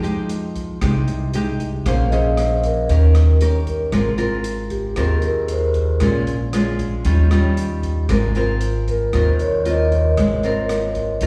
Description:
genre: bossa nova.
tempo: 115 BPM.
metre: 4/4.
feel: straight.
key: Ab major.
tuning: A4 = 442 Hz.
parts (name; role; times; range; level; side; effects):
nylon-string guitar; accompaniment; 0.0-11.3 s; Bb2 to C5; -25 LUFS; equal; plate reverb, slapback echo.
upright bass; bass; 0.0-11.3 s; Ab1 to F2; -22 LUFS; equal; none.
open jazz drum kit; drums; 0.0-11.3 s; hi-hat, kick drum, rim click; -29 LUFS; equal; none.
vibraphone with soft mallets; accompaniment; 1.9-11.3 s; G4 to F5; -24 LUFS; equal; plate reverb, slapback echo.
room: light reverb.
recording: live gig heard through the venue's PA, recital hall reverb, studio reverb.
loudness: -19 LUFS.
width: mono.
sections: 0.0-11.3 A section.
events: vibraphone solo 0.0-11.3.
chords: 0.0 Fm9; 1.9 Bbm9; 2.9 Eb7; 3.9 Ab69; 6.0 Bbm7; 7.1 Eb9; 8.1 Ab69.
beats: 0.30 0.82 1.34 | 1.86 2.38 2.90 3.42 | 3.94 4.46 4.98 5.50 | 6.02 6.54 7.06 7.58 | 8.10 8.62 9.14 9.66 | 10.18 10.70 11.22.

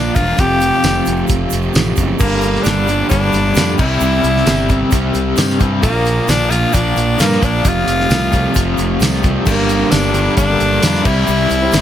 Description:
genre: classic rock.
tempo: 132 BPM.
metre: 4/4.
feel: straight.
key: G dorian.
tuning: A4 = 441 Hz.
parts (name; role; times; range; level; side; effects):
raspy tenor saxophone; melody; 0.0-11.8 s; Bb3 to G4; -18 LUFS; left 2 dB; none.
overdriven semi-hollow guitar; riff; 0.0-11.8 s; F2 to C4; -20 LUFS; left 5 dB; tremolo.
sludgy distorted guitar; riff; 0.0-11.8 s; F2 to E4; -20 LUFS; right 6 dB; overdrive.
fuzz fingered electric bass; bass; 0.0-11.8 s; E1 to G2; -19 LUFS; equal; overdrive.
egg shaker; percussion; 0.1-11.8 s; none; -32 LUFS; right 7 dB; none.
damped 70s drum kit; drums; 0.2-11.8 s; crash cymbal, hi-hat, kick drum, snare drum, tambourine; -17 LUFS; equal; none.
dark upright piano; accompaniment; 9.4-11.8 s; D4 to C5; -26 LUFS; right 2 dB; none.
thick fuzz guitar; riff; 9.5-11.8 s; G2 to Bb4; -23 LUFS; left 1 dB; none.
room: moderate studio reverb, RT60 0.7 s.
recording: none.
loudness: -12 LUFS.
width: side -10 dB against mid.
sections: 0.0-2.2 A section; 2.2-11.8 B section.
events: none.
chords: 0.4 Fadd9; 2.2 Gm; 3.8 C; 5.8 Bb; 7.6 F; 9.5 Gm; 11.0 C.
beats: | 0.39 0.84 1.29 1.75 | 2.20 2.65 3.11 3.56 | 4.02 4.47 4.92 5.38 | 5.83 6.29 6.74 7.19 | 7.65 8.10 8.55 9.01 | 9.46 9.91 10.37 10.82 | 11.27 11.73.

